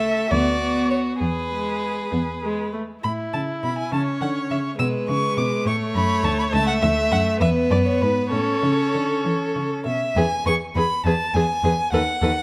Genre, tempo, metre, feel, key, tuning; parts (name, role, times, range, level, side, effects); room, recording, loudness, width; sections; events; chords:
quick classical-period movement for string quartet; 64-70 BPM (dotted quarters); 6/8; rubato; A major; A4 = 441 Hz
rich violin; melody; 0.0-12.4 s; A4 to E6; -27 LUFS; equal
rich violin; second line; 0.0-12.3 s; F#4 to E5; -29 LUFS; equal
rich viola; accompaniment; 0.0-12.3 s; G#3 to A4; -28 LUFS; equal
rich cello; bass; 0.0-12.3 s; C#2 to E3; -27 LUFS; equal
moderate scoring stage reverb, RT60 1.6 s; close, detailed microphones; -22 LUFS; mono
0.0-10.2 A section; 10.2-12.4 B section
0.3 Bm/D; 1.2 E; 3.0 A; 4.8 Bm69; 5.7 A; 6.5 A/C#; 7.4 E; 8.3 A; 10.2 E